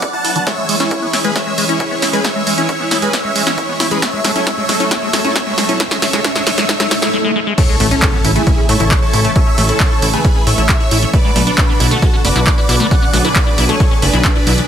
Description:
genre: uplifting trance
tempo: 135 BPM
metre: 4/4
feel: straight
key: A major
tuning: A4 = 437 Hz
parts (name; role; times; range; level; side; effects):
- big supersaw lead; melody; 0.0-14.6 s; C#4 to A5; -18 LUFS; equal; sidechain pumping, dub echo
- lush unison pad; sustained chords; 0.0-14.7 s; B2 to B4; -22 LUFS; equal; chorus, sidechain pumping
- liquid acid bass; arpeggios; 0.0-14.6 s; E3 to E4; -21 LUFS; left 2 dB; phaser, sidechain pumping, dub echo
- electronic kick drum; drums; 0.0-14.3 s; none; -15 LUFS; equal; high-pass filter on kick, high-pass filter on room
- punchy analog drum machine; drums; 0.0-14.7 s; crash cymbal, handclaps, hi-hat, snare drum; -18 LUFS; right 1 dB; sidechain pumping on hats, high-pass filter on hats, high-pass filter on snare, sidechain pumping on cymbals, high-pass filter on cymbals, high-pass filter on room
- riser, swell and impact; sound effects; 2.9-9.4 s; none; -24 LUFS; equal; none
- plucky analog bass; bass; 7.8-14.6 s; F#1 to A2; -15 LUFS; equal; sidechain pumping
room: light reverb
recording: none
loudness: -11 LUFS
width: side -9 dB against mid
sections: 0.0-7.6 A section; 7.6-14.7 B section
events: build-up 0.0-7.6; filter sweep on acid bass 0.0-7.6; drum fill 0.5-7.1; riser 2.9-7.1; swell 6.7-7.6; drop 7.6-14.7; impact 7.6-9.4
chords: 0.5 C#m; 4.0 F#m; 7.6 A; 11.1 Bm

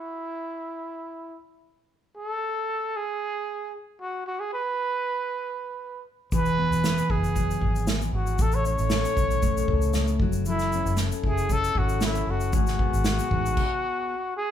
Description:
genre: acoustic pop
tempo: 116 BPM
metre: 4/4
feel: swing 55% on 16ths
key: E major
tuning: A4 = 440 Hz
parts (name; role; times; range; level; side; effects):
- breathy trumpet; melody; 0.0-14.5 s; E4 to C#5; -28 LUFS; right 1 dB; none
- fingerpicked steel-string acoustic guitar; accompaniment; 6.3-14.1 s; G#2 to A4; -29 LUFS; left 3 dB; none
- vintage muted fingered electric bass; bass; 6.3-13.5 s; E1 to C#2; -27 LUFS; equal; none
- unplugged drum kit; drums; 6.3-13.7 s; crash cymbal, kick drum, shaker, snare drum; -27 LUFS; equal; none
room: moderate large studio reverb, RT60 1.2 s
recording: band playing live in one room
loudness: -23 LUFS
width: side -10 dB against mid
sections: 0.0-14.5 A section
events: stop 13.6-14.5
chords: 0.0 N.C.; 6.3 Eadd9; 8.4 A; 10.2 F#m7; 12.5 G#m7

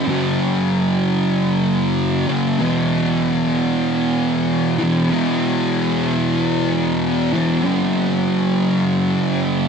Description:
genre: rock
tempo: 95 BPM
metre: 4/4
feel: straight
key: unclear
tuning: A4 = 441 Hz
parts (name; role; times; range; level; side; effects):
- thick fuzz guitar; solo; 0.0-9.7 s; E2 to F#3; -16 LUFS; equal; distortion, analog chorus
room: moderate huge ambient reverb, RT60 6.6 s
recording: none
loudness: -16 LUFS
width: side -6 dB against mid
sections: 0.0-9.7 A section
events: none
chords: 0.0 F#5; 2.6 E5; 7.6 F#5

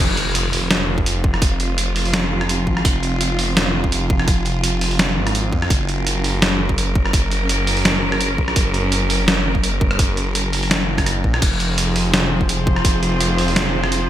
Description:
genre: half-time drum and bass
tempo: 168 BPM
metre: 4/4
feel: swing 53% on 16ths, half-time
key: F phrygian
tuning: A4 = 442 Hz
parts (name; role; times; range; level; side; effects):
- rich symphonic cello section; sustained chords; 0.0-14.1 s; F3 to Bb4; -24 LUFS; right 1 dB; sidechain pumping
- koto; arpeggios; 0.0-2.2 s; Eb4 to C5; -37 LUFS; left 4 dB; none
- phased detuned saw bass; bass; 0.0-14.1 s; F1 to F2; -21 LUFS; equal; phaser
- impact; sound effects; 0.1-1.4 s; none; -31 LUFS; right 1 dB; none
- boom bap sampler-style drum kit; drums; 0.2-14.0 s; crash cymbal, hi-hat, rim click, snare drum; -20 LUFS; equal; gated reverb
- electronic kick drum; drums; 1.0-12.9 s; none; -18 LUFS; equal; none
- metallic inharmonic drone; texture; 11.9-14.1 s; C5; -28 LUFS; equal; chorus, built-in reverb
room: light reverb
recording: bright 1980s-style digital production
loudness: -16 LUFS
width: side -12 dB against mid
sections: 0.0-14.1 A section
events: drop 0.0-14.1; impact 0.0-1.4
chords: 0.0 Fm; 5.7 Gb; 11.4 Fm

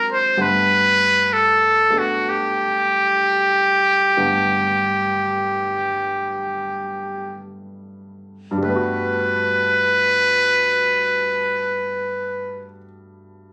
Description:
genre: jazz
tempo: free time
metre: none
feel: none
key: G major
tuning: A4 = 440 Hz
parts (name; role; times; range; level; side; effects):
- trumpet with metal mute; melody; 0.0-12.7 s; F#4 to C5; -19 LUFS; equal; none
- warm baby grand piano; accompaniment; 0.0-13.5 s; G2 to F#5; -30 LUFS; equal; none
room: light reverb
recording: recorded on a phone in the room, studio reverb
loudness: -19 LUFS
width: mono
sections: 0.0-8.6 A section; 8.6-13.5 B section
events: slowing down 0.4-8.6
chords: 0.4 Gmaj9

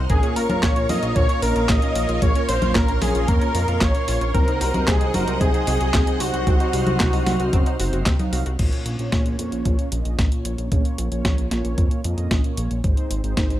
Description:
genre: italo disco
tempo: 113 BPM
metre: 4/4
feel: straight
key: Bb minor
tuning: A4 = 440 Hz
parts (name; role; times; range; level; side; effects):
- string machine, full ensemble; sustained chords; 0.0-8.6 s; Bb4 to F6; -30 LUFS; left 1 dB; ensemble chorus
- analog pluck; arpeggios; 0.0-8.6 s; Bb3 to Gb4; -32 LUFS; left 3 dB; chorus, tape echo
- mellow synth brass; stabs; 0.0-13.6 s; Ab2 to F5; -28 LUFS; right 2 dB; chorus, vintage 12-bit sampler grit
- chorused synth bass; bass; 0.0-13.6 s; Gb1 to F2; -24 LUFS; equal; tube saturation
- wide unison lead; melody; 0.1-8.3 s; Gb4 to Eb5; -24 LUFS; equal; tape echo
- clean 12-bit digital drum machine; drums; 0.1-13.6 s; congas, crash cymbal, handclaps, hi-hat, snare drum; -26 LUFS; equal; overdrive
- electronic kick drum; drums; 0.1-13.5 s; none; -20 LUFS; equal; none
room: little or no reverb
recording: none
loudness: -18 LUFS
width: side -13 dB against mid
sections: 0.0-8.6 A section; 8.6-13.6 B section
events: none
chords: 0.1 Bbm; 4.3 Cdim; 8.6 Bbm; 12.8 Ab

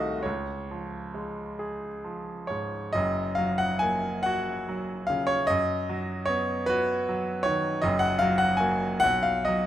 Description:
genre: classical, romantic nocturne for solo piano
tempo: 43-53 BPM (dotted quarters)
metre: 12/8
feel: rubato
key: F# major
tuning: A4 = 440 Hz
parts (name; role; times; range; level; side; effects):
- bright concert grand piano; solo; 0.0-9.7 s; F#1 to G#5; -25 LUFS; equal; none
room: light reverb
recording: close, detailed microphones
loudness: -25 LUFS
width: side -12 dB against mid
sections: 0.0-2.9 A section; 2.9-9.7 B section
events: none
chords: 0.2 C#; 2.9 F#; 5.5 B/F#; 7.8 F#; 9.0 B

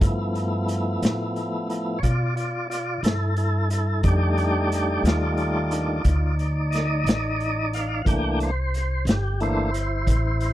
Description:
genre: slow blues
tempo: 60 BPM (dotted quarters)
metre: 12/8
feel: straight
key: unclear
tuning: A4 = 440 Hz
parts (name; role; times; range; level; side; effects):
- tonewheel organ; sustained chords; 0.0-10.5 s; Eb3 to G5; -25 LUFS; equal; overdrive, fast rotary speaker
- upright bass; bass; 0.0-10.5 s; G1 to B2; -24 LUFS; equal; none
- vintage drum kit; drums; 0.0-10.5 s; hi-hat, kick drum, snare drum; -24 LUFS; equal; none
room: little or no reverb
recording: none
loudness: -21 LUFS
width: side -14 dB against mid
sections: 0.0-10.5 A section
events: tonewheel organ solo 0.0-10.5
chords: 0.0 G13; 4.0 F13; 8.1 C13

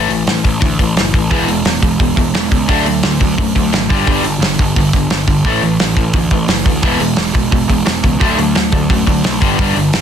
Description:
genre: punk rock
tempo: 174 BPM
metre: 4/4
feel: straight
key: unclear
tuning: A4 = 442 Hz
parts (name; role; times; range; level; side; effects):
- crunchy overdriven guitar; riff; 0.0-10.0 s; E2 to D4; -18 LUFS; left 12 dB; none
- fuzz picked electric bass; bass; 0.0-10.0 s; E1 to F#2; -19 LUFS; equal; overdrive
- loose indie drum kit; drums; 0.1-10.0 s; hi-hat, kick drum, snare drum; -15 LUFS; equal; none
- overdriven semi-hollow guitar; riff; 1.3-10.0 s; G2 to B3; -18 LUFS; right 12 dB; none
room: little or no reverb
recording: dense, heavily limited modern master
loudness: -11 LUFS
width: side -8 dB against mid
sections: 0.0-10.0 A section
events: none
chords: 0.0 A5; 1.3 E; 2.7 D; 3.9 G5; 5.4 A5; 6.8 E; 8.2 D; 9.4 G5

